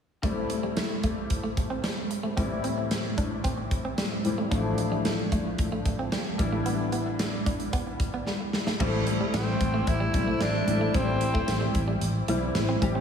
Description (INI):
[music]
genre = 1980s-style pop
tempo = 112 BPM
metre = 4/4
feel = straight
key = A minor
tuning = A4 = 440 Hz
[part]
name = warm concert grand piano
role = accompaniment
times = 0.2-13.0 s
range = A2 to G4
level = -30 LUFS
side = left 2 dB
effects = ensemble chorus
[part]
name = clean electric guitar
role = riff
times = 0.2-13.0 s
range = G3 to D4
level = -34 LUFS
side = right 3 dB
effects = lush chorus, diffuse ambient delay
[part]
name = big rock drum kit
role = drums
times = 0.2-12.9 s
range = crash cymbal, hi-hat, kick drum, snare drum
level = -30 LUFS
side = equal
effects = none
[part]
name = vintage muted fingered electric bass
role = bass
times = 4.5-13.0 s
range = A1 to B1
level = -30 LUFS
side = equal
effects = none
[part]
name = growling tenor saxophone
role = melody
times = 9.4-11.8 s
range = C4 to E4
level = -31 LUFS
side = right 1 dB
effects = diffuse ambient delay
[sound]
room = wet lush hall reverb, RT60 2.5 s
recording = dreamy mix soaked in reverb, small room ambience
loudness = -25 LUFS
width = side -7 dB against mid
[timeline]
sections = 0.2-8.8 A section; 8.8-13.0 B section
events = drum fill 8.3-8.8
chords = 0.2 Am7; 2.4 C/A; 4.5 Dmadd9/A; 6.4 Em7/A; 8.8 Am7